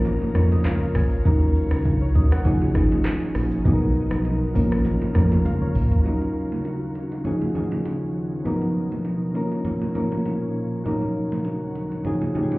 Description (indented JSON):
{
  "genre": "afrobeats",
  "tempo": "100 BPM",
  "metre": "4/4",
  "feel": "swing 55% on 16ths",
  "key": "Eb minor",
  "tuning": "A4 = 440 Hz",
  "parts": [
    { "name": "soft electric-piano-like synth keys", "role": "accompaniment", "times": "0.0-12.6 s", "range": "Eb3 to Ab5", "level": "-25 LUFS", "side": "left 1 dB", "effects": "chorus" },
    { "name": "ethereal airy pad", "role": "sustained chords", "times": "0.0-12.6 s", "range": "Eb2 to A#4", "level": "-30 LUFS", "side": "right 1 dB", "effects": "ensemble chorus, built-in reverb" },
    { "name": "round analog bass", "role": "bass", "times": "0.0-6.0 s", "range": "Ab1 to F2", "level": "-21 LUFS", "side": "equal", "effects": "none" },
    { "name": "congas and bongos", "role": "percussion", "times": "0.0-12.6 s", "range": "none", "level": "-30 LUFS", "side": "right 2 dB", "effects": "none" },
    { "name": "afro-pop drum kit", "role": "drums", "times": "0.1-6.0 s", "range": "handclaps, hi-hat, kick drum, rim click, shaker, toms", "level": "-23 LUFS", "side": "equal", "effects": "none" }
  ],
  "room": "little or no reverb",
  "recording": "heard muffled through a wall, club reverb, EQ",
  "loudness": "-20 LUFS",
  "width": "side -21 dB against mid",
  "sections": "0.0-6.1 A section; 6.1-12.6 B section",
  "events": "synth keys fill 0.1-1.3, 5.2-6.1; drum fill 5.5-6.1",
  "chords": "0.0 Bbm; 1.3 Ebm7; 2.5 Dbadd9; 3.7 Bmaj7; 4.6 Bbm; 6.1 Ebm7; 7.3 Dbadd9; 8.5 Bmaj7; 9.4 Bbm; 10.9 Ebm7; 12.1 Dbadd9"
}